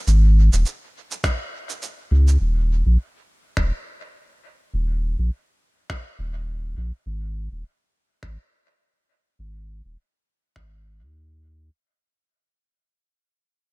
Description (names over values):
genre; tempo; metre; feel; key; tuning
ambient dub; 103 BPM; 4/4; swing 56% on 16ths; unclear; A4 = 440 Hz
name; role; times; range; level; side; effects
warm sub bass; bass; 0.1-11.7 s; Eb1 to Eb2; -18 LUFS; equal; none
electronic cabasa and finger snaps; drums; 0.1-10.7 s; none; -30 LUFS; right 2 dB; overdrive, dub echo
electronic kick drum; drums; 1.2-10.7 s; none; -25 LUFS; equal; overdrive
room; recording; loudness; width
little or no reverb; none; -19 LUFS; side -25 dB against mid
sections
0.0-11.7 A section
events
fade-out 0.0-11.7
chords
none